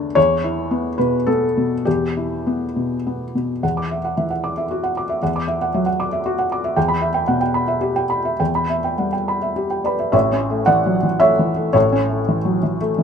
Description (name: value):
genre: neoclassical minimalist piano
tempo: 100-119 BPM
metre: 3/4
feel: rubato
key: E dorian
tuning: A4 = 440 Hz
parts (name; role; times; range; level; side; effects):
- felt-muted upright piano; solo; 0.0-13.0 s; A1 to D6; -17 LUFS; equal; none
room: light reverb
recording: minimal, uncompressed stereo recording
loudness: -17 LUFS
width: side -7 dB against mid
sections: 0.0-3.6 A section; 3.6-10.1 B section; 10.1-13.0 C section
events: none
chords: 0.2 Em; 3.6 Dadd9/E; 6.8 Em; 10.1 A